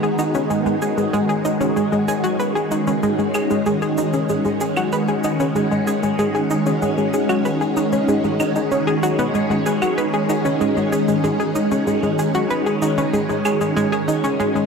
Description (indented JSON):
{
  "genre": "ambient, sequencer-driven space music",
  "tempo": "95 BPM",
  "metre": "4/4",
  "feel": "straight",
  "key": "unclear",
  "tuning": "A4 = 440 Hz",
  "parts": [
    { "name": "phased string machine", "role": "sustained chords", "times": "0.0-14.7 s", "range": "D#3 to G#4", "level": "-20 LUFS", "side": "equal", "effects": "ensemble chorus, phaser" },
    { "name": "analog pluck", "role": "riff", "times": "0.0-14.7 s", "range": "G#3 to B4", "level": "-20 LUFS", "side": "equal", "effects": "chorus, ping-pong delay" },
    { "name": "cabasa and claves", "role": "percussion", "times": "0.0-14.7 s", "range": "none", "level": "-34 LUFS", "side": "right 2 dB", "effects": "ping-pong delay" }
  ],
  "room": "wet huge ambient reverb, RT60 7.7 s",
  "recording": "in a vast, echoing space",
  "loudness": "-17 LUFS",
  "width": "side -5 dB against mid",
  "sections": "0.0-14.7 A section",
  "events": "none",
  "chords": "0.0 G#m7"
}